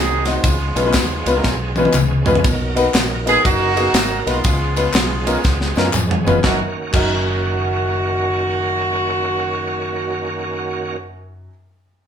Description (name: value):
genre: uptempo gospel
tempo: 120 BPM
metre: 4/4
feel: swing 64% on 8ths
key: F# major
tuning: A4 = 441 Hz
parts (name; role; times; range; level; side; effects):
- warm horn section; melody; 0.0-11.2 s; G#3 to G#4; -21 LUFS; right 2 dB; none
- bright tonewheel organ; sustained chords; 0.0-11.0 s; D#3 to A#4; -26 LUFS; right 3 dB; slow rotary speaker, chorus vibrato
- deep dub fingered electric bass; bass; 0.0-11.5 s; E#1 to F#2; -24 LUFS; equal; none
- clear concert grand piano; accompaniment; 0.3-11.5 s; F#2 to D#5; -21 LUFS; left 2 dB; none
- tight funk drum kit; drums; 0.3-7.1 s; crash cymbal, kick drum, ride cymbal, snare drum, toms; -19 LUFS; equal; none
- tambourine and handclaps; percussion; 0.3-7.1 s; none; -28 LUFS; left 4 dB; none
room: moderate large studio reverb, RT60 0.8 s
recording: band playing live in one room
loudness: -15 LUFS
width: side -8 dB against mid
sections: 0.0-2.4 A section; 2.4-6.4 B section; 6.4-10.4 C section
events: drum fill 1.4-2.4, 5.4-6.4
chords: 0.4 C#7; 2.4 Bmaj7; 4.4 C#7; 6.4 F#6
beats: | 0.44 0.94 1.44 1.94 | 2.44 2.94 3.44 3.94 | 4.44 4.94 5.44 5.94 | 6.44 6.94 7.44 7.93 | 8.43 8.93 9.43 9.93